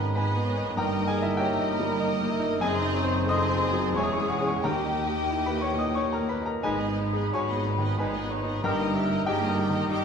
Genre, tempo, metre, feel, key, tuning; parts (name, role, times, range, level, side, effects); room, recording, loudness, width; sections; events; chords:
classical; 81-98 BPM; 3/4; rubato; G# minor; A4 = 435 Hz
clear grand piano; melody; 0.0-10.0 s; D#2 to D#6; -28 LUFS; left 2 dB
rich studio violin section; melody; 0.0-10.0 s; B4 to G5; -40 LUFS; left 2 dB
dark cor anglais; second line; 0.0-10.0 s; A#4 to G5; -36 LUFS; right 2 dB
large flute ensemble; second line; 0.0-10.0 s; G5 to B#5; -36 LUFS; left 4 dB
mellow clarinet; second line; 0.0-10.0 s; C#4 to E4; -37 LUFS; equal
rich studio violin section; second line; 0.0-10.0 s; D#4 to A#4; -37 LUFS; left 1 dB
warm studio viola section; accompaniment; 0.0-10.0 s; G3 to B#3; -35 LUFS; right 2 dB
mellow French horn section; sustained chords; 0.0-8.9 s; D#3 to D#4; -36 LUFS; left 4 dB
dark trumpet section; stabs; 0.0-8.9 s; G4 to B4; -35 LUFS; right 4 dB
rich studio double bass section; bass; 0.0-10.0 s; E1 to D#2; -34 LUFS; right 2 dB
warm studio cello section; bass; 0.0-10.0 s; D#2 to G#2; -33 LUFS; right 2 dB
timpani; percussion; 4.6-5.6 s; D#3; -40 LUFS; right 1 dB
wet recital hall reverb, RT60 1.6 s; minimal, uncompressed stereo recording; -24 LUFS; side -6 dB against mid
0.0-10.0 A section
0.0 G#m; 0.8 D#/G; 2.6 G#7/F#; 4.0 C#m/E; 4.6 D#; 6.6 G#m; 8.6 D#/G